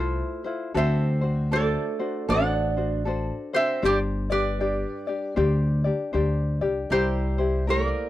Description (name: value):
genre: Hawaiian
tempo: 78 BPM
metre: 4/4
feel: swing 62% on 8ths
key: unclear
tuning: A4 = 440 Hz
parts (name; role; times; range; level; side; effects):
- lap resonator guitar; melody; 0.0-8.1 s; G4 to F#5; -27 LUFS; right 2 dB; none
- picked old ladder-braced acoustic guitar; second line; 0.0-8.1 s; G3 to D4; -32 LUFS; right 5 dB; none
- ukulele; accompaniment; 0.0-8.1 s; D4 to D5; -28 LUFS; left 4 dB; none
- upright bass; bass; 0.0-7.9 s; G1 to D2; -25 LUFS; equal; none
room: little or no reverb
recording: dry, close 1970s-style studio recording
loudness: -22 LUFS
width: side -14 dB against mid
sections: 0.0-8.1 A section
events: none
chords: 0.0 Fmaj7/C; 0.7 D7; 3.8 Gsus4; 6.9 C7